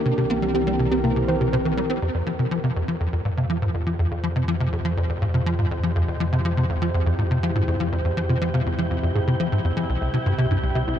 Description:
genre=ambient, sequencer-driven space music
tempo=122 BPM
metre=4/4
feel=straight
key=F harmonic minor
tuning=A4 = 435 Hz
part: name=sweeping resonant pad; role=sustained chords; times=0.0-11.0 s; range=C3 to C5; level=-29 LUFS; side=left 1 dB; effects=chorus, phaser
part: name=warm sub bass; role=bass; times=0.0-11.0 s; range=C2 to F2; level=-28 LUFS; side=equal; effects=none
part: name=tight sequencer bass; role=riff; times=0.1-10.9 s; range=C2 to C4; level=-22 LUFS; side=equal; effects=ensemble chorus, tape echo
part: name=warbly dusty pluck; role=arpeggios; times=0.2-10.9 s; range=Bb3 to Ab5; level=-32 LUFS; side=moving between left 1 dB and right 5 dB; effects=chorus, auto-pan, tape echo
part: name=wind-like tuned noise texture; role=texture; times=3.4-11.0 s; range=G4 to G5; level=-37 LUFS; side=right 1 dB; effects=built-in reverb
room=light reverb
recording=cassette tape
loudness=-20 LUFS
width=side -10 dB against mid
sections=0.0-2.0 A section; 2.0-11.0 B section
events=fade-in on synth arpeggio sound 2.0-11.0; fade-in on analog synth pad 2.0-11.0; fade-in on synth texture 2.0-11.0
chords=0.1 C7; 2.0 Fm; 9.9 C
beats=| 0.05 0.55 1.04 1.53 | 2.02 2.51 3.00 3.50 | 3.99 4.48 4.97 5.46 | 5.96 6.45 6.94 7.43 | 7.92 8.41 8.91 9.40 | 9.89 10.38 10.87

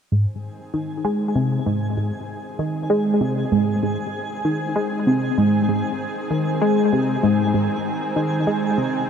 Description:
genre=ambient, sequencer-driven space music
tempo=97 BPM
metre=4/4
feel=straight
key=Ab major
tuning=A4 = 442 Hz
part: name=lush unison pad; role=sustained chords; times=0.1-9.1 s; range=Eb3 to Ab4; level=-30 LUFS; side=equal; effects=chorus
part: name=tight sequenced synth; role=riff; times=0.1-9.0 s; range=Ab2 to Ab3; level=-19 LUFS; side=equal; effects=chorus, phaser, ping-pong delay
part: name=twinkling granular texture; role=texture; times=0.8-9.1 s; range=Ab5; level=-33 LUFS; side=right 3 dB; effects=built-in reverb
room=moderate huge ambient reverb, RT60 8.6 s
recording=in a vast, echoing space, cassette tape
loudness=-19 LUFS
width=side -7 dB against mid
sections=0.1-9.1 A section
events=none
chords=0.1 Ab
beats=| 0.12 0.74 1.36 1.97 | 2.59 3.21 3.83 4.45 | 5.07 5.69 6.30 6.92 | 7.54 8.16 8.78

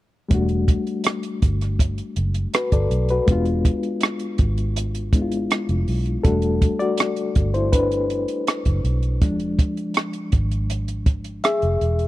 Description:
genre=lush 1970s-style soul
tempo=81 BPM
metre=4/4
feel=straight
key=E minor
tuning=A4 = 440 Hz
part: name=reed electric piano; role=accompaniment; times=0.3-12.1 s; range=F3 to E5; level=-24 LUFS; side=left 2 dB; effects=fast tremolo
part: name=vintage muted fingered electric bass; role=bass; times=0.3-12.1 s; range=E1 to B1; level=-23 LUFS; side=equal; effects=none
part: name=compact cocktail drum kit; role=drums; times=0.3-12.1 s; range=hi-hat, kick drum, rim click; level=-20 LUFS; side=right 1 dB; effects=none
room=small room ambience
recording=dry, close 1970s-style studio recording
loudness=-19 LUFS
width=side -16 dB against mid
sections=0.3-6.2 A section; 6.2-12.1 B section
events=reed electric piano solo 6.2-12.1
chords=0.3 Em11; 3.3 E7b9; 6.2 Em11; 9.2 E7b9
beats=| 0.31 1.05 1.79 2.53 | 3.28 4.02 4.76 5.50 | 6.25 6.99 7.73 8.47 | 9.21 9.96 10.70 11.44

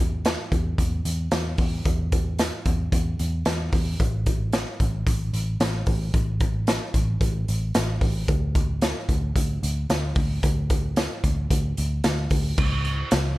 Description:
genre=jangly indie pop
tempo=112 BPM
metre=4/4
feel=straight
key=unclear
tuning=A4 = 436 Hz
part: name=vintage muted picked electric bass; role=bass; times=0.0-13.3 s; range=A1 to E2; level=-25 LUFS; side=equal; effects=none
part: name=raw garage drum kit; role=drums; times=0.2-13.2 s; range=crash cymbal, hi-hat, kick drum, snare drum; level=-24 LUFS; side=equal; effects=none
room=little or no reverb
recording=none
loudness=-22 LUFS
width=side -18 dB against mid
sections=0.0-12.6 A section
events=none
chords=none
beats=0.25 0.78 1.32 | 1.85 2.39 2.93 3.46 | 4.00 4.53 5.07 5.61 | 6.14 6.68 7.21 7.75 | 8.28 8.82 9.36 9.89 | 10.43 10.97 11.50 12.04 | 12.58 13.12

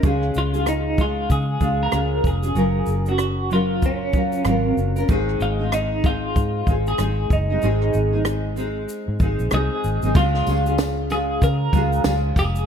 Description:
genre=acoustic pop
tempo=95 BPM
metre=4/4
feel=swing 60% on 16ths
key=Db major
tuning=A4 = 442 Hz
part: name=nylon-string guitar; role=accompaniment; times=0.0-12.7 s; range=Ab2 to Bb4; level=-23 LUFS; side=equal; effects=double-tracked left and right
part: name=vintage muted fingered electric bass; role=bass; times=0.0-12.6 s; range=F1 to Db3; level=-23 LUFS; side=equal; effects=none
part: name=compact cocktail drum kit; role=drums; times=0.0-12.7 s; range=kick drum, rim click, shaker, snare drum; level=-21 LUFS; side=equal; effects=none
part: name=twelve-string electric guitar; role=melody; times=0.4-12.7 s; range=Db4 to Bb4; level=-26 LUFS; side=right 1 dB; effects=tremolo, diffuse ambient delay
part: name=tambourine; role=percussion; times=10.2-12.5 s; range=none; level=-44 LUFS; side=left 8 dB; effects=none
room=light reverb, studio reverb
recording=none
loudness=-18 LUFS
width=side -8 dB against mid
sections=0.0-10.2 A section; 10.2-12.7 B section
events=none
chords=0.0 Db; 2.6 Gbmaj7; 5.1 Ab; 10.2 Db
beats=| 0.04 0.67 1.30 1.93 | 2.56 3.19 3.83 4.46 | 5.09 5.72 6.36 6.99 | 7.62 8.25 8.88 9.52 | 10.15 10.78 11.41 12.05

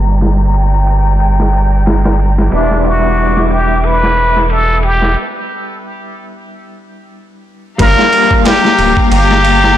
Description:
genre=trip hop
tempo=91 BPM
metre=4/4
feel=swing 56% on 16ths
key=G minor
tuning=A4 = 438 Hz
part: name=electric guitar at the edge of break-up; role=accompaniment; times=0.0-9.8 s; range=G3 to F4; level=-18 LUFS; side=left 2 dB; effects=tremolo, low-pass filter
part: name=muted studio string section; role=sustained chords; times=0.0-9.8 s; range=G3 to D6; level=-19 LUFS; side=left 2 dB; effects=low-pass filter
part: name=round analog bass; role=bass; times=0.0-9.8 s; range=D1 to G1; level=-12 LUFS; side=equal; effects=tube saturation
part: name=dusty soul sampler-style drum kit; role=drums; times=0.2-9.8 s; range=kick drum, ride cymbal, snare drum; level=-18 LUFS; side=right 1 dB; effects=overdrive, low-pass filter on snare, small room ambience, low-pass filter on cymbals, low-pass filter on kick
part: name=trumpet with plunger mute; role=melody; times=2.5-9.8 s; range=D4 to B4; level=-13 LUFS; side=equal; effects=tape echo
room=light reverb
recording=blown-out, overdriven recording, overdrive, low-pass filter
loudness=-9 LUFS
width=side -12 dB against mid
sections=0.0-7.8 A section; 7.8-9.8 B section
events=filter sweep on clean electric guitar 0.0-7.8; filter sweep on string section 0.0-7.8; filter sweep 0.0-7.8; break 5.2-7.8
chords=0.0 Gm7; 2.5 Em7; 7.8 Gm7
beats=0.54 1.20 1.86 | 2.52 3.18 3.84 4.50 | 5.16 5.82 6.48 7.14 | 7.80 8.46 9.11 9.77

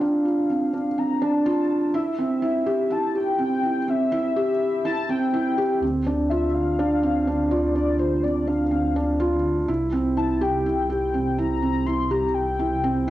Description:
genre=piano and strings electronica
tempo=124 BPM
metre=4/4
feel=straight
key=D minor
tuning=A4 = 440 Hz
part: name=warm velvety synth lead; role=melody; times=0.0-13.1 s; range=C5 to C6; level=-28 LUFS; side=left 4 dB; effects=chorus
part: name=felt-muted upright piano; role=riff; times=0.0-13.1 s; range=C4 to G4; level=-22 LUFS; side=right 1 dB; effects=none
part: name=dark detuned saw bass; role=bass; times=0.0-13.1 s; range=C2 to D2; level=-30 LUFS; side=equal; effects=high-pass filter
room=wet studio reverb, RT60 0.6 s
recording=home recording on cassette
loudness=-20 LUFS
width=side -14 dB against mid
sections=0.0-5.8 A section; 5.8-13.1 B section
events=build-up 0.0-5.8; filter sweep on soft synth lead 0.0-5.8; drop 5.8-13.1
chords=0.0 Dm7; 1.9 C; 5.8 Dm7; 9.7 C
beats=| 0.01 0.50 0.98 1.46 | 1.95 2.43 2.92 3.40 | 3.88 4.37 4.85 5.33 | 5.82 6.30 6.79 7.27 | 7.75 8.24 8.72 9.21 | 9.69 10.17 10.66 11.14 | 11.62 12.11 12.59 13.08

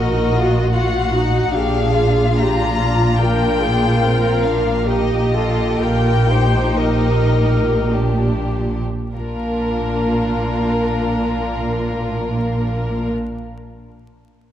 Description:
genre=classical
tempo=46-78 BPM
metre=4/4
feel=rubato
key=Bb major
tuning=A4 = 440 Hz
part: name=rich chamber violin section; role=melody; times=0.0-13.1 s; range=Bb4 to Bb5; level=-25 LUFS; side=left 5 dB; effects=none
part: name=rich chamber violin section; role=second line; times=0.0-13.1 s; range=C4 to Bb4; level=-24 LUFS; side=left 2 dB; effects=none
part: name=warm chamber viola section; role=accompaniment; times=0.0-13.1 s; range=Bb3 to C5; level=-22 LUFS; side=equal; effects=none
part: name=rich chamber double bass section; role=bass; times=0.0-13.1 s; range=Bb1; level=-21 LUFS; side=right 1 dB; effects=none
part: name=warm chamber cello section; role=bass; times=0.0-13.1 s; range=Bb2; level=-22 LUFS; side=right 1 dB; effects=none
room=wet concert hall reverb, RT60 2.5 s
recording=dark, warm production, vinyl crackle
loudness=-15 LUFS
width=side -10 dB against mid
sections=0.0-9.2 A section; 9.2-13.8 B section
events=slowing down 0.0-9.2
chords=0.0 Ebm/Bb; 1.5 Bb7; 4.9 Eb/Bb; 9.2 Bb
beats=0.73 | 1.52 2.38 3.19 4.03 | 4.89 5.80 6.79 7.91 | 9.15 10.29 11.43 12.60

